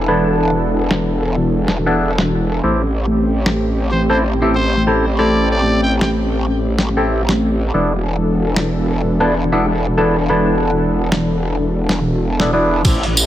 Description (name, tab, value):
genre	glitch hop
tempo	94 BPM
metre	4/4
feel	swing 58% on 16ths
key	unclear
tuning	A4 = 440 Hz
part	warm analog pad	sustained chords	0.0-13.3 s	E3 to A4	-21 LUFS	left 1 dB	chorus, sidechain pumping
part	growl bass	bass	0.0-13.3 s	E1 to A1	-18 LUFS	equal	chorus
part	mellow clav	stabs	0.1-13.0 s	B3 to B4	-19 LUFS	equal	phaser, sidechain pumping, low-pass filter, digital delay
part	boom bap sampler-style drum kit	drums	0.9-13.1 s	crash cymbal, hi-hat, snare drum	-20 LUFS	equal	low-pass filter on snare, low-pass filter on hats, low-pass filter on cymbals
part	growling trumpet	melody	3.9-6.1 s	C5 to G5	-22 LUFS	right 1 dB	digital delay
part	electronic kick drum	drums	12.8-13.0 s	none	-15 LUFS	equal	none
part	tambourine	percussion	12.8-13.3 s	none	-16 LUFS	right 2 dB	none
room	light reverb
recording	none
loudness	-14 LUFS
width	side -12 dB against mid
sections	0.0-12.8 A section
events	none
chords	0.0 E7sus4; 2.6 Am7; 7.7 E7sus4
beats	| 0.08 0.72 1.36 2.00 | 2.64 3.27 3.91 4.55 | 5.19 5.83 6.47 7.11 | 7.74 8.38 9.02 9.66 | 10.30 10.94 11.57 12.21 | 12.85